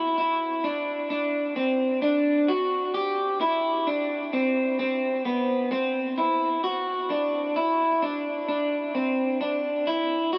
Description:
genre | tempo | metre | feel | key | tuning
dream pop | 65 BPM | 4/4 | straight | unclear | A4 = 439 Hz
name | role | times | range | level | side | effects
electric guitar through a small old amp | solo | 0.0-10.4 s | B3 to G4 | -26 LUFS | equal | lush chorus, delay
room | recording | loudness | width
wet huge ambient reverb, RT60 7.7 s | none | -26 LUFS | mono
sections
0.0-3.9 A section; 3.9-10.4 B section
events
none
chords
none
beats
| 0.18 1.10 2.02 2.95 | 3.87 4.79 5.72 6.64 | 7.56 8.48 9.41 10.33

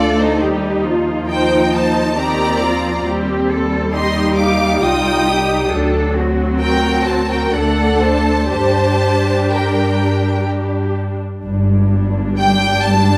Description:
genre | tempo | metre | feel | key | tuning
classical, slow romantic movement for string orchestra | 60-69 BPM | 3/4 | rubato | G minor | A4 = 440 Hz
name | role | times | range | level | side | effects
clear symphonic violin section | melody | 0.0-13.2 s | C5 to Eb6 | -23 LUFS | equal | none
warm symphonic violin section | second line | 0.0-13.2 s | Eb4 to A5 | -23 LUFS | equal | none
dark symphonic viola section | accompaniment | 0.0-13.2 s | Eb3 to F4 | -21 LUFS | equal | none
clear symphonic double bass section | bass | 0.0-13.2 s | G1 to G2 | -22 LUFS | equal | none
warm symphonic cello section | bass | 0.0-13.2 s | G2 to A4 | -24 LUFS | equal | none
room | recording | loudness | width
moderate scoring stage reverb, RT60 2.0 s | none | -16 LUFS | mono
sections
0.0-11.4 A section; 11.4-13.2 B section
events
none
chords
0.4 Cm/Eb; 3.1 Am7b5/Eb; 5.7 D7; 7.6 D; 8.5 Gm; 11.4 G5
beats
| 0.42 1.31 2.19 | 3.06 3.96 4.85 | 5.72 6.61 7.55 | 8.53 9.52 10.48 | 11.44 12.38

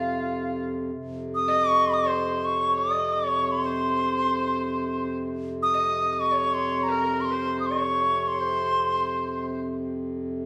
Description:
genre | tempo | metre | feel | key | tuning
indian classical, Hindustani | free time | none | none | unclear | A4 = 438 Hz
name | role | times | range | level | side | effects
bright reedy bansuri | melody | 0.0-9.5 s | F5 to Eb6 | -26 LUFS | equal | none
clear sarangi | second line | 0.0-9.6 s | F4 to Eb5 | -34 LUFS | equal | none
pedal harmonium | drone | 0.0-10.5 s | F2 to C3 | -32 LUFS | equal | none
room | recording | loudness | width
wet recital hall reverb, RT60 1.5 s | recorded in a church or concert hall | -25 LUFS | mono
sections
0.9-10.5 A section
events
none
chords
none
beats
free time

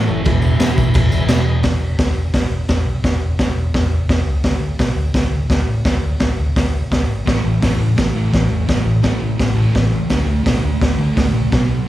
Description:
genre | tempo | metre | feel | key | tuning
garage rock duo or trio | 170 BPM | 4/4 | straight | unclear | A4 = 440 Hz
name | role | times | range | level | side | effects
overdriven combo organ | sustained chords | 0.0-1.6 s | G#4 to E5 | -28 LUFS | right 1 dB | none
fuzz guitar | riff | 0.0-1.6, 7.3-11.9 s | E2 to D4 | -19 LUFS | equal | distortion, slapback echo
overdriven picked electric bass | bass | 0.0-11.8 s | E1 to B2 | -20 LUFS | equal | none
tambourine | percussion | 0.1-1.5 s | none | -37 LUFS | left 1 dB | none
raw garage drum kit | drums | 0.3-11.6 s | crash cymbal, hi-hat, kick drum, snare drum | -17 LUFS | equal | none
room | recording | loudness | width
little or no reverb | live gig heard through the venue's PA, club reverb | -14 LUFS | side -14 dB against mid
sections
0.0-1.6 A section; 1.6-11.9 B section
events
none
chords
0.2 E; 1.6 E5; 4.4 D5; 7.3 A5; 10.1 D5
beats
| 0.24 0.59 0.94 1.28 | 1.63 1.98 2.33 2.68 | 3.03 3.38 3.73 4.08 | 4.43 4.79 5.14 5.49 | 5.85 6.20 6.55 6.91 | 7.26 7.62 7.97 8.33 | 8.68 9.04 9.39 9.75 | 10.10 10.45 10.81 11.16 | 11.51 11.87

